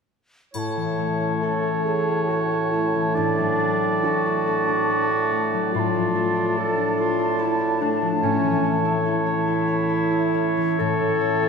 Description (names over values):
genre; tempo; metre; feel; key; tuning
classical, slow romantic movement for symphony orchestra; 70 BPM; 3/4; uneven beats, rubato; A major; A4 = 440 Hz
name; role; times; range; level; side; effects
clear oboe; second line; 0.5-11.5 s; C#5 to D5; -28 LUFS; right 1 dB; none
mellow clarinet; second line; 0.5-11.5 s; C#4 to A4; -26 LUFS; right 1 dB; none
mellow hollow wooden flute; second line; 0.5-11.5 s; A5 to B5; -28 LUFS; left 1 dB; none
mellow bassoon; accompaniment; 0.5-11.5 s; A2; -26 LUFS; right 4 dB; none
concert harp; arpeggios; 0.5-11.5 s; A2 to C#5; -26 LUFS; left 6 dB; none
triangle; percussion; 0.5-2.2 s; none; -43 LUFS; left 4 dB; none
room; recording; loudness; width
wet concert hall reverb, RT60 2.5 s; none; -20 LUFS; side -5 dB against mid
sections
0.5-11.5 A section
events
none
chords
0.5 A; 3.2 D/A; 5.8 Dm/A; 8.2 A